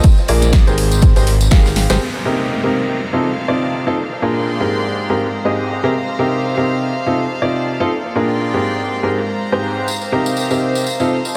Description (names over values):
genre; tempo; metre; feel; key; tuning
piano house; 122 BPM; 4/4; swing 56% on 16ths; C minor; A4 = 437 Hz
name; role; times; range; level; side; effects
clear upright piano; riff; 0.0-11.2 s; Ab2 to F5; -20 LUFS; equal; vintage 12-bit sampler grit, sidechain pumping, tape echo
electronic kick drum; drums; 0.0-1.6 s; none; -12 LUFS; equal; overdrive
punchy analog drum machine; drums; 0.0-2.0 s; hi-hat, snare drum; -27 LUFS; equal; overdrive, low-pass filter on hats, low-pass filter on snare
tight funk drum kit; drums; 0.0-2.0 s; hi-hat, ride cymbal, snare drum; -35 LUFS; equal; none
tambourine; percussion; 0.0-2.0, 9.9-11.3 s; none; -31 LUFS; equal; none
fat analog bass; bass; 0.3-2.0 s; Ab1 to Bb1; -17 LUFS; equal; sidechain pumping
downlifter; sound effects; 2.0-5.9 s; none; -30 LUFS; equal; none
rich chamber string section; texture; 2.0-11.4 s; Ab3 to C6; -26 LUFS; equal; sidechain pumping
room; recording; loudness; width
moderate huge ambient reverb, RT60 8.2 s; dreamy mix soaked in reverb; -17 LUFS; mono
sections
0.0-2.0 A section; 2.0-11.4 B section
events
drum fill 1.8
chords
0.0 Bb7; 0.8 Abmaj9; 2.0 Cm7; 3.0 F7/C; 4.0 Bb7; 4.7 Abmaj9; 5.9 Cm7; 6.9 F7/C; 7.9 Abmaj9; 9.9 Cm7; 10.9 F7/C